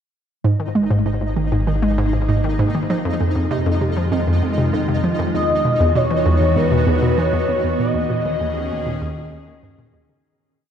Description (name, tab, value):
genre	ambient, sequencer-driven space music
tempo	98 BPM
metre	4/4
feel	straight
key	unclear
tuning	A4 = 437 Hz
part	evolving wavetable pad	sustained chords	1.4-10.2 s	C3 to Ab4	-25 LUFS	right 1 dB	ensemble chorus, built-in reverb
part	hollow square pluck	riff	0.4-10.2 s	Eb2 to Ab3	-19 LUFS	equal	chorus, ping-pong delay
part	analog drone	bass	1.0-10.2 s	Ab1 to F2	-23 LUFS	equal	chorus
part	pulsing gated texture	texture	0.4-10.3 s	Eb4 to Eb5	-27 LUFS	equal	chorus, built-in reverb
part	expressive synth lead	melody	5.3-9.6 s	B4 to Eb5	-20 LUFS	left 1 dB	analog chorus, ping-pong delay
room	wet cathedral reverb, RT60 7.3 s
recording	in a vast, echoing space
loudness	-16 LUFS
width	side -8 dB against mid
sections	0.4-10.2 A section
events	fade-in on ambient pad 0.4-10.2; fade-out 7.0-10.2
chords	0.4 Abadd9; 2.9 Fm7; 5.3 Esus2; 7.8 Eb7sus4